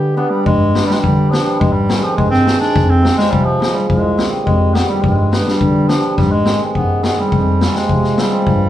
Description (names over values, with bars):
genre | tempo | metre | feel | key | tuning
klezmer | 105 BPM | 2/4 | straight | G phrygian dominant | A4 = 440 Hz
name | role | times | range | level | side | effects
clear clarinet | melody | 0.0-8.7 s | F3 to G4 | -17 LUFS | equal | plate reverb
cimbalom | accompaniment | 0.0-8.5 s | D3 to Eb4 | -18 LUFS | equal | none
dark bass clarinet | bass | 0.0-8.7 s | C2 to D3 | -18 LUFS | equal | none
street-band drum kit | drums | 0.5-8.6 s | kick drum, snare drum | -18 LUFS | left 2 dB | none
room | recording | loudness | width
wet studio reverb, RT60 0.6 s | heard from further back in the room | -12 LUFS | side -12 dB against mid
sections
0.5-8.7 A section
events
none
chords
0.5 G; 1.6 Ab; 2.8 Fm; 3.9 Cm; 5.0 G; 6.2 Ab; 7.3 Fm